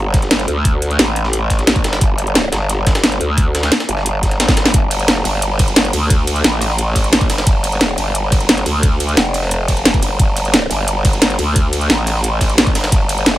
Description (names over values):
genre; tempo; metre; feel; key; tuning
dark technical drum and bass; 176 BPM; 4/4; straight; unclear; A4 = 440 Hz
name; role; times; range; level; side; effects
growl bass; bass; 0.0-13.4 s; F1 to D2; -17 LUFS; equal; chorus, overdrive, sidechain pumping
breakbeat sampler-style drum kit; drums; 0.1-13.3 s; hi-hat, snare drum; -24 LUFS; equal; high-pass filter on snare, high-pass filter on hats
drum and bass drum kit; drums; 0.1-13.3 s; hi-hat, ride cymbal, snare drum; -16 LUFS; equal; none
electronic kick drum; drums; 0.1-13.0 s; none; -15 LUFS; equal; none
room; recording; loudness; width
little or no reverb; none; -12 LUFS; side -15 dB against mid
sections
0.0-13.4 A section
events
drum fill 4.4-4.7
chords
none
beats
0.31 | 0.65 0.99 1.33 1.67 | 2.01 2.35 2.69 3.04 | 3.38 3.72 4.06 4.40 | 4.74 5.08 5.42 5.76 | 6.10 6.45 6.79 7.13 | 7.47 7.81 8.15 8.49 | 8.83 9.17 9.51 9.85 | 10.20 10.54 10.88 11.22 | 11.56 11.90 12.24 12.58 | 12.92 13.26